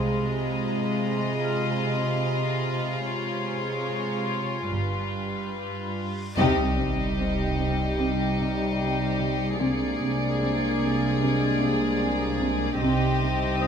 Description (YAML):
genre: cinematic, suspense film score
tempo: 74 BPM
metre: 4/4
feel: straight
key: C minor from 6.4 s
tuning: A4 = 439 Hz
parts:
  - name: rich studio violin section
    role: melody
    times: 0.0-13.7 s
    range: B4 to Eb5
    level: -33 LUFS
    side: left 2 dB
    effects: none
  - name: rich studio violin section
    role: second line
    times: 0.0-13.7 s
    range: F4 to Ab4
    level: -31 LUFS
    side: left 2 dB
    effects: none
  - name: rich studio viola section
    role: accompaniment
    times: 0.0-13.7 s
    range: G3 to C4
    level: -31 LUFS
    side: right 1 dB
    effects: none
  - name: rich studio double bass section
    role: bass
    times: 0.0-13.7 s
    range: G1 to C2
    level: -30 LUFS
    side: right 3 dB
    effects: none
  - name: warm studio cello section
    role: bass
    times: 0.0-13.7 s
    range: G2 to C3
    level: -31 LUFS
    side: right 2 dB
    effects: none
  - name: dark studio violin section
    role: texture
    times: 0.0-12.4 s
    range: Ab5 to Db7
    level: -41 LUFS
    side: left 2 dB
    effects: none
  - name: large celesta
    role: texture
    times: 0.0-13.7 s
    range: C5 to Ab6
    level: -41 LUFS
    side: left 6 dB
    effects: none
  - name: reverse cymbal and sub drop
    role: sound effects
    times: 6.2-9.6 s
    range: none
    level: -33 LUFS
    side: left 1 dB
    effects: none
  - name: mellow French horn section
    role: sustained chords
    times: 6.4-13.7 s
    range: G3 to Eb4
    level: -29 LUFS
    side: left 3 dB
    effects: none
  - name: warm studio cello section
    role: riff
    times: 6.4-13.7 s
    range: C3 to C4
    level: -30 LUFS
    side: equal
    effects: none
room: moderate scoring stage reverb, RT60 1.8 s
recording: none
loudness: -23 LUFS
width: side -7 dB against mid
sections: 0.0-6.4 A section; 6.4-13.7 B section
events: reverse cymbal 6.2; band accent 6.4-7.2; impact 6.4-9.6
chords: 0.0 Ab6/C; 4.7 G7; 6.4 Cm; 9.6 Bb7/C; 12.8 Cm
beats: 0.63 1.44 2.25 | 3.06 3.87 4.71 5.54 | 6.37 7.19 7.99 8.79 | 9.60 10.41 11.21 12.02 | 12.82 13.61